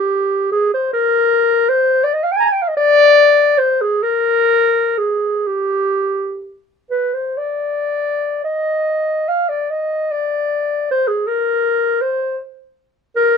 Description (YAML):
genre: classical, free, expressive piece for unaccompanied clarinet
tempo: 34-57 BPM (dotted quarters)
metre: 6/8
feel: rubato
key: unclear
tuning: A4 = 440 Hz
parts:
  - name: dark clarinet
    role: solo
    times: 0.0-13.4 s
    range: G4 to Bb5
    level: -14 LUFS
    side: left 1 dB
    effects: none
room: little or no reverb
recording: close, detailed microphones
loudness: -14 LUFS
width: side -6 dB against mid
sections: 0.0-13.4 A section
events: none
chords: none